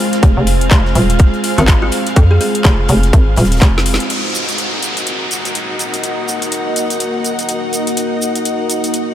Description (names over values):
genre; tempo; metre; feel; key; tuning
bass house; 124 BPM; 4/4; swing 59% on 16ths; Eb dorian; A4 = 440 Hz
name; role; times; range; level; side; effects
deep dark ambient pad; sustained chords; 0.0-9.1 s; Ab3 to Eb5; -21 LUFS; equal; chorus, built-in reverb, sidechain pumping
dark chamber string section; texture; 0.0-9.1 s; C4 to Gb5; -22 LUFS; left 1 dB; sidechain pumping
damped 70s drum kit; drums; 0.1-4.1 s; hi-hat, snare drum; -32 LUFS; left 3 dB; none
garage drum kit; drums; 0.1-9.1 s; cabasa, handclaps, hi-hat, snare drum; -20 LUFS; left 1 dB; none
hollow knocking FM bass; bass; 0.2-4.0 s; Eb1 to F2; -13 LUFS; equal; tube saturation, sidechain pumping
electronic kick drum; drums; 0.2-3.7 s; none; -8 LUFS; equal; none
kalimba; melody; 1.6-2.5 s; F4 to Ab4; -25 LUFS; equal; tape echo
downlifter; sound effects; 4.1-8.0 s; none; -23 LUFS; equal; none
room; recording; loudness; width
moderate huge ambient reverb, RT60 7.7 s; dreamy mix soaked in reverb; -12 LUFS; side -11 dB against mid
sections
0.0-4.1 A section; 4.1-9.1 B section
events
drum fill 3.6-4.1; band accent 3.9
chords
0.0 Fm; 4.1 Ebm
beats
| 0.23 0.71 1.20 1.68 | 2.16 2.65 3.13 3.62 | 4.10 4.58 5.07 5.55 | 6.04 6.52 7.00 7.49 | 7.97 8.46 8.94